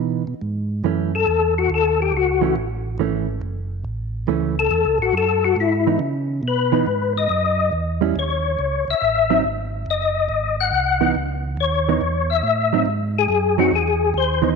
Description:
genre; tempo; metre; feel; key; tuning
jazz; 140 BPM; 4/4; swing 67% on 8ths; C# minor; A4 = 441 Hz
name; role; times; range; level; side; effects
hollow-body jazz guitar; accompaniment; 0.0-14.6 s; E3 to E4; -23 LUFS; right 12 dB; none
mellow tonewheel organ; bass; 0.0-14.6 s; F#1 to C#3; -24 LUFS; right 2 dB; slow rotary speaker
percussive tonewheel organ; melody; 1.2-14.5 s; E4 to F#5; -19 LUFS; left 6 dB; slow rotary speaker, chorus vibrato, slapback echo
room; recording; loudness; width
wet echo chamber reverb, RT60 1.6 s; 1960s-style stereo with parts hard left and right; -18 LUFS; side -4 dB against mid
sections
0.0-14.6 A section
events
tonewheel organ solo 0.0-14.6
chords
0.0 C#m9 (rootless); 0.8 F#m7; 6.0 C#7sus2; 7.7 A; 9.4 G#7; 11.2 C#madd9; 12.9 G#7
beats
0.41 | 0.84 1.27 1.70 2.13 | 2.56 2.99 3.42 3.85 | 4.28 4.71 5.14 5.57 | 6.00 6.43 6.86 7.29 | 7.72 8.15 8.58 9.01 | 9.44 9.86 10.29 10.72 | 11.15 11.58 12.01 12.44 | 12.87 13.29 13.72 14.15

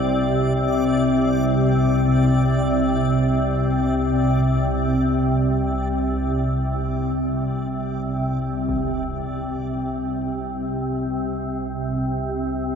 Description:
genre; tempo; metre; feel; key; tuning
dark ambient drone; free time; none; none; C minor; A4 = 440 Hz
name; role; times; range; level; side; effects
organ-like drone; drone; 0.0-12.8 s; C2 to C3; -19 LUFS; equal; ensemble chorus, built-in reverb
backwards swelling texture; texture; 0.0-8.7 s; D5; -32 LUFS; right 3 dB; built-in reverb
deep dark ambient pad; sustained chords; 11.3-12.8 s; C4 to Eb5; -40 LUFS; equal; none
impact; percussion; 8.7-8.9 s; none; -38 LUFS; equal; none
room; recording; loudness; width
wet huge ambient reverb, RT60 8.1 s; in a vast, echoing space; -19 LUFS; side -7 dB against mid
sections
0.0-8.7 A section; 8.7-12.8 B section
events
fade-out on synth texture 0.0-8.7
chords
0.0 Csus2; 8.7 Cm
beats
free time

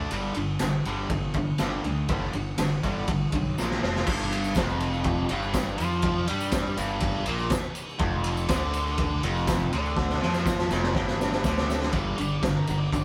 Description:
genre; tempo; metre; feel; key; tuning
garage rock duo or trio; 122 BPM; 4/4; straight; unclear; A4 = 439 Hz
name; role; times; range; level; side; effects
biting overdriven guitar; riff; 0.0-13.0 s; F2 to F4; -31 LUFS; equal; none
fuzz picked electric bass; bass; 0.0-13.0 s; F1 to G2; -33 LUFS; equal; overdrive
raw garage drum kit; drums; 0.1-13.0 s; crash cymbal, kick drum, ride cymbal, snare drum; -30 LUFS; equal; none
tambourine; percussion; 0.6-13.0 s; none; -48 LUFS; equal; none
overdriven combo organ; melody; 12.2-13.0 s; C#4 to D5; -39 LUFS; equal; none
room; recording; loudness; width
light reverb; band playing live in one room; -27 LUFS; mono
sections
0.0-4.1 A section; 4.1-11.9 B section; 11.9-13.0 C section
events
drum fill 3.6-4.1, 10.0-11.9; transistor combo organ solo 11.9-13.0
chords
0.1 G5; 3.6 Bb5; 3.8 F5; 4.1 Fsus2; 8.0 Dmadd11/F; 11.9 G5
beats
| 0.11 0.61 1.10 1.60 | 2.09 2.58 3.08 3.57 | 4.07 4.56 5.05 5.54 | 6.04 6.53 7.02 7.51 | 8.01 8.50 8.99 9.48 | 9.97 10.47 10.96 11.45 | 11.94 12.44 12.93

